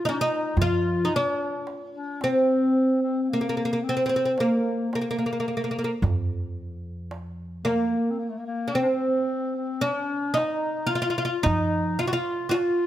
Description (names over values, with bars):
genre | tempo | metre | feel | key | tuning
Turkish makam ensemble | 110 BPM (eighths) | 10/8 | straight | F makam hicaz | A4 = 439 Hz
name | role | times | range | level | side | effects
oud | melody | 0.0-12.9 s | Bb3 to Gb4 | -24 LUFS | right 1 dB | none
warm clarinet | second line | 0.0-12.9 s | A3 to F4 | -30 LUFS | left 5 dB | none
darbuka | percussion | 0.0-12.8 s | none | -28 LUFS | right 3 dB | none
upright bass | bass | 0.6-11.9 s | F2 to F3 | -29 LUFS | equal | none
room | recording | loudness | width
light reverb | none | -22 LUFS | side -12 dB against mid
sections
0.0-12.9 A section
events
none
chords
none